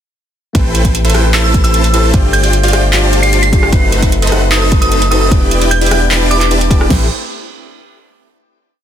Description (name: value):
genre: future bass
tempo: 151 BPM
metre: 4/4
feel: half-time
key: A minor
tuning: A4 = 445 Hz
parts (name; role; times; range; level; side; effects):
- tine electric piano; accompaniment; 0.5-7.1 s; A3 to D5; -19 LUFS; left 2 dB; phaser, sidechain pumping, ping-pong delay
- supersaw chords; riff; 0.5-7.1 s; D#4 to A5; -16 LUFS; equal; sidechain pumping
- pop drum kit; drums; 0.5-7.0 s; crash cymbal, kick drum, snare drum; -13 LUFS; equal; overdrive
- long sustained 808-style bass; bass; 0.6-7.1 s; E1 to A1; -14 LUFS; equal; sidechain pumping
- pop drum kit; drums; 0.6-6.9 s; handclaps, hi-hat, rim click; -17 LUFS; right 1 dB; overdrive
- glassy synth bell; melody; 1.3-6.5 s; D6 to C7; -18 LUFS; right 2 dB; chorus, sidechain pumping, ping-pong delay
room: little or no reverb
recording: dense, heavily limited modern master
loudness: -9 LUFS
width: side -10 dB against mid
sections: 0.5-6.9 drop; 6.9-8.5 final chord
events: drop 0.5-6.9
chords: 0.5 Am9; 2.1 G7sus4; 3.7 B7b9/F#; 5.3 Em7; 6.9 Am9